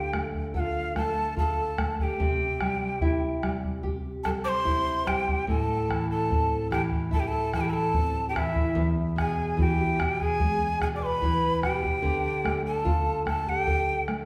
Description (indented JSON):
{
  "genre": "andean folk, Andean ensemble",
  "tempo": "73 BPM",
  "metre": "4/4",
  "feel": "straight",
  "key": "A minor",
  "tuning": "A4 = 439 Hz",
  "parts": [
    { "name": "breathy bright quena", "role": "melody", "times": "0.0-14.0 s", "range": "E5 to D6", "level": "-31 LUFS", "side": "equal", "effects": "none" },
    { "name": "breathy large pan pipes", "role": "second line", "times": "0.0-14.0 s", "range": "E4 to D5", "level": "-35 LUFS", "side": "equal", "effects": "none" },
    { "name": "nylon-string guitar", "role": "accompaniment", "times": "0.0-14.3 s", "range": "E2 to A4", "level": "-33 LUFS", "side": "equal", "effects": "none" },
    { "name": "bombo", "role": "percussion", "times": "0.1-14.3 s", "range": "none", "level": "-32 LUFS", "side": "equal", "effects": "none" }
  ],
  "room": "wet recital hall reverb, RT60 1.4 s",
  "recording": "recorded in a church or concert hall",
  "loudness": "-27 LUFS",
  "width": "mono",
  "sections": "0.0-14.3 A section",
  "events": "none",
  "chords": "0.0 Dm; 2.2 C; 5.5 Am; 8.8 E; 12.0 Dm"
}